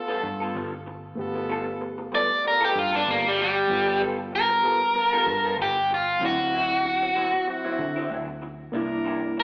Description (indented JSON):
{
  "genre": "blues",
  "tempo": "95 BPM",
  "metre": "4/4",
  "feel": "swing 55% on 16ths",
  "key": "G mixolydian",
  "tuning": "A4 = 441 Hz",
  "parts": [
    { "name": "reed electric piano", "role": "accompaniment", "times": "0.0-9.4 s", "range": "F#3 to G4", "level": "-33 LUFS", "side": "equal", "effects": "fast tremolo" },
    { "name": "clear horn section", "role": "sustained chords", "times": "0.0-9.4 s", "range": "B3 to A5", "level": "-34 LUFS", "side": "equal", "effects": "none" },
    { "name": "electric guitar through a small old amp", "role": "stabs", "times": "0.1-9.4 s", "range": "C3 to A4", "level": "-32 LUFS", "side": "equal", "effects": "phaser, slapback echo" },
    { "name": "vintage muted fingered electric bass", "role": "bass", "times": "0.2-9.4 s", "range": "G1 to D3", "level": "-38 LUFS", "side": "equal", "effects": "none" },
    { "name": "biting overdriven guitar", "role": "melody", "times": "2.1-9.4 s", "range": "G3 to D5", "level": "-21 LUFS", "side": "equal", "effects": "slapback echo" }
  ],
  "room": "light reverb",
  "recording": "live gig heard through the venue's PA, club reverb, AM radio sound",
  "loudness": "-22 LUFS",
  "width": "side -29 dB against mid",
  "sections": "0.0-9.4 A section",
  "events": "overdriven electric guitar solo 0.0-9.4",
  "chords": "0.0 G9; 6.2 D9; 8.7 C9"
}